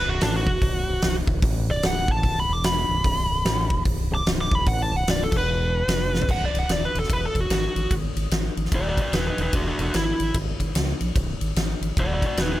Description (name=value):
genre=blues rock power trio and southern rock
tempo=148 BPM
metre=4/4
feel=swing 63% on 8ths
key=unclear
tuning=A4 = 440 Hz
part: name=bluesy overdriven lead guitar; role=melody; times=0.0-12.6 s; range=D4 to D6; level=-26 LUFS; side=equal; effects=distortion
part: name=growling fingered electric bass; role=bass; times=0.0-12.5 s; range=B0 to C#2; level=-26 LUFS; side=equal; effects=overdrive
part: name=huge arena drum kit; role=drums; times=0.2-12.5 s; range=crash cymbal, hi-hat, kick drum, ride cymbal, snare drum, toms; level=-25 LUFS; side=equal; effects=none
room=little or no reverb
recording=none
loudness=-21 LUFS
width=side -15 dB against mid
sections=0.0-6.3 A section; 6.3-12.6 B section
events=lead electric guitar solo 0.0-6.3; drum fill 6.1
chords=0.0 B5; 2.4 E5; 2.9 B7(no3); 5.3 E5; 5.9 N.C.; 6.3 B; 9.5 E; 11.2 B